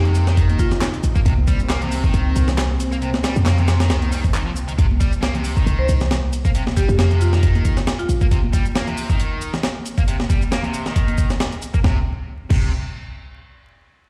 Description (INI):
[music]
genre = breakbeat, breaks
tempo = 136 BPM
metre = 4/4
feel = swing 55% on 16ths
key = C minor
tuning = A4 = 440 Hz
[part]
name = phased analog pad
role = sustained chords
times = 0.0-4.8 s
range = C3 to Eb4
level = -31 LUFS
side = equal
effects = phaser, chorus, vintage 12-bit sampler grit, sidechain pumping
[part]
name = distorted electric guitar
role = riff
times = 0.0-12.7 s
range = C3 to Bb3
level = -31 LUFS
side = equal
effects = overdrive, low-pass filter, delay
[part]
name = warm 808-style bass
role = bass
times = 0.0-8.3, 11.8-12.7 s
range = Bb1 to F2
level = -20 LUFS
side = equal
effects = tube saturation
[part]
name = congas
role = percussion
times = 0.0-11.2 s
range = none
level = -33 LUFS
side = equal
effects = none
[part]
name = breakbeat sampler-style drum kit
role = drums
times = 0.1-12.6 s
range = crash cymbal, hi-hat, kick drum, snare drum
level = -22 LUFS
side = equal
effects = none
[part]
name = electronic shaker and handclaps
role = drums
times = 0.1-11.8 s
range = none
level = -36 LUFS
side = equal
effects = none
[part]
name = marimba with medium hard mallets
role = melody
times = 0.6-0.9, 5.8-8.2 s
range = F4 to C5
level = -30 LUFS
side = equal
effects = small speaker sound, delay
[sound]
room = digital ambience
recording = played on a big sound system in a bare room, large studio reverb, vinyl crackle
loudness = -19 LUFS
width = mono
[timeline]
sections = 0.0-4.8 A section; 4.8-11.8 B section; 11.8-13.6 C section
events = none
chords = 0.0 Cm7; 4.8 Cm; 11.8 N.C.